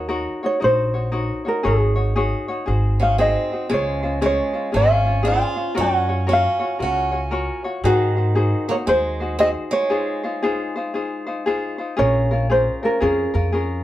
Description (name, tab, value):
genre	Hawaiian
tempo	116 BPM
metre	4/4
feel	swing 64% on 8ths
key	Db major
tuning	A4 = 439 Hz
part	ukulele	melody	0.0-13.8 s	Gb4 to Ab5	-20 LUFS	right 1 dB	plate reverb
part	ukulele	accompaniment	0.0-13.8 s	Db4 to Db5	-24 LUFS	left 2 dB	none
part	upright bass	bass	0.0-13.8 s	Ab1 to Ab2	-22 LUFS	equal	none
part	picked swing-style acoustic guitar	second line	3.0-11.7 s	Eb3 to F4	-28 LUFS	right 3 dB	none
room	wet studio ambience, RT60 0.5 s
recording	heard from further back in the room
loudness	-18 LUFS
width	side -14 dB against mid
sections	0.0-12.0 A section; 12.0-13.8 B section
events	break 9.9-12.0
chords	0.0 Ebm7; 1.6 Ab7sus4; 2.7 Ab7; 3.7 Dbmaj7; 5.8 Gbmaj7; 7.8 Ab7; 9.9 Dbmaj9; 12.0 Bbm7